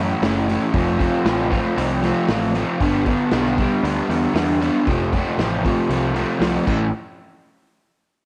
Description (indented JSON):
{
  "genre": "garage rock duo or trio",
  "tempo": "116 BPM",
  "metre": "4/4",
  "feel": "straight",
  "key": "unclear",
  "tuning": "A4 = 440 Hz",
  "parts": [
    { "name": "crunchy overdriven guitar", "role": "riff", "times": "0.0-6.9 s", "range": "F2 to F4", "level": "-22 LUFS", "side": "equal", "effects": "cassette tape" },
    { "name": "growling picked electric bass", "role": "bass", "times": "0.0-6.9 s", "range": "F1 to F#2", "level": "-27 LUFS", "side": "equal", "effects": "overdrive" },
    { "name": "vintage drum kit", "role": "drums", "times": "0.2-6.8 s", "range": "crash cymbal, hi-hat, kick drum, snare drum", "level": "-28 LUFS", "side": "equal", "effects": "cassette tape" }
  ],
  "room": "light reverb, small room ambience",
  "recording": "home recording on cassette",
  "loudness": "-20 LUFS",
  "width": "mono",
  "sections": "0.0-6.9 A section; 6.9-8.2 B section",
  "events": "none",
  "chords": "0.0 A; 0.7 F; 2.8 G; 4.9 F; 6.7 A; 6.9 N.C."
}